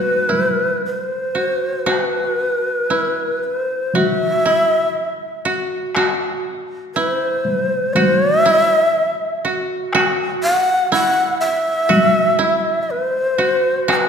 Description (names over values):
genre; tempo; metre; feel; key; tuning
japanese traditional, Japanese chamber music; 60 BPM; 4/4; rubato; unclear; A4 = 439 Hz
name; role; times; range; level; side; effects
breathy bright long shakuhachi; melody; 0.0-14.1 s; B4 to F#5; -17 LUFS; equal; none
koto; second line; 0.0-14.1 s; E4 to F#4; -21 LUFS; right 1 dB; none
taiko ensemble; percussion; 0.3-14.1 s; none; -22 LUFS; equal; none
room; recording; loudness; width
wet concert hall reverb, RT60 2.1 s; recorded in a church or concert hall; -15 LUFS; side -7 dB against mid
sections
0.0-1.9 A section; 1.9-14.1 B section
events
none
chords
none